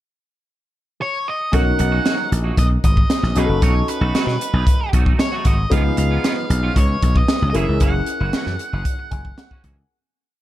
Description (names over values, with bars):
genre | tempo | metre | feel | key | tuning
polished 1980s jazz-funk pop | 115 BPM | 4/4 | straight | B major | A4 = 439 Hz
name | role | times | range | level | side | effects
octave-fuzz lead guitar | melody | 1.0-9.6 s | B4 to F#5 | -25 LUFS | right 1 dB | distortion
warm grand piano | accompaniment | 1.5-9.9 s | A#3 to G#5 | -26 LUFS | left 2 dB | lush chorus
clean electric guitar | riff | 1.5-9.8 s | E3 to G#4 | -30 LUFS | right 6 dB | ensemble chorus
dry thumbed slap bass | bass | 1.5-9.8 s | F#1 to B2 | -19 LUFS | equal | none
crisp fusion drum kit | drums | 1.5-9.8 s | hi-hat, kick drum, snare drum | -18 LUFS | equal | none
room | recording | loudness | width
studio ambience | dark, warm production | -16 LUFS | side -14 dB against mid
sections
0.0-1.5 pickup bar; 1.5-9.9 verse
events
fade-out 7.8-9.9; grand piano fill 8.9-9.9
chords
0.0 N.C.; 1.5 Bmaj7; 3.4 B7; 5.7 C#7; 7.5 F#7